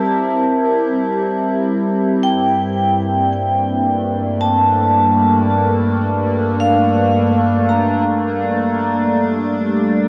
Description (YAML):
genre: ambient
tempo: 55 BPM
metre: 3/4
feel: straight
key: unclear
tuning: A4 = 440 Hz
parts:
  - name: evolving wavetable pad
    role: sustained chords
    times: 0.0-10.1 s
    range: G2 to Bb4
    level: -18 LUFS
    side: equal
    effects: chorus, built-in reverb, phaser
  - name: vibraphone with hard mallets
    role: arpeggios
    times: 0.0-10.1 s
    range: F5 to Bb5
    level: -21 LUFS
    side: equal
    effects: tape echo
room: wet huge ambient reverb, RT60 8.0 s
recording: worn, warbling old tape, cassette tape, warbly pitch drift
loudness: -16 LUFS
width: mono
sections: 0.0-10.1 A section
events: none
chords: 0.0 C7/G; 2.2 Bbmaj7/G; 8.8 Gsus2